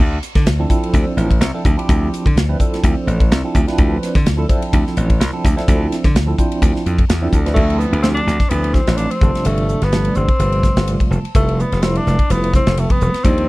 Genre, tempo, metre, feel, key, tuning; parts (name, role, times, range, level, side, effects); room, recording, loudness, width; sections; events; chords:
electric jazz fusion; 127 BPM; 4/4; swing 54% on 16ths; D dorian; A4 = 441 Hz
slap bass; bass; 0.0-13.5 s; E1 to D3; -17 LUFS; equal
modern studio drum kit; drums; 0.2-13.5 s; crash cymbal, hi-hat, kick drum, ride cymbal, snare drum; -17 LUFS; equal
barky tine electric piano; accompaniment; 0.6-13.5 s; C3 to A5; -22 LUFS; right 2 dB; fast tremolo, phaser
clear tenor saxophone; melody; 7.5-13.5 s; A3 to D4; -21 LUFS; left 1 dB
little or no reverb; dark, warm production; -13 LUFS; side -20 dB against mid
0.0-7.6 A section; 7.6-13.5 B section
tine electric piano fill 6.9-7.6, 10.6-11.3
0.0 Dm9; 9.2 G9sus4; 11.3 Fmaj9